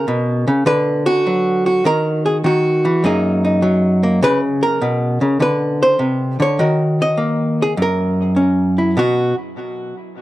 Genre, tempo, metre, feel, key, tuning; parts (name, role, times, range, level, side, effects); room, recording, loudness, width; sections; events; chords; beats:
solo jazz; 101 BPM; 4/4; swing 67% on 8ths; A4 = 440 Hz
archtop guitar, miked and amplified; solo; 0.0-9.3 s; F#2 to D#5; -14 LUFS; equal; tape echo
little or no reverb; dry, close 1970s-style studio recording; -14 LUFS; side -16 dB against mid
0.0-9.0 A section; 9.0-10.2 B section
0.0 A#m; 0.7 D; 1.8 D#m; 3.0 F#69; 4.2 A#m; 5.4 Csus2; 6.6 D#m; 7.8 F#7; 9.0 N.C.
0.06 0.66 1.25 | 1.84 2.43 3.02 3.62 | 4.21 4.80 5.40 5.99 | 6.58 7.18 7.77 8.36 | 8.96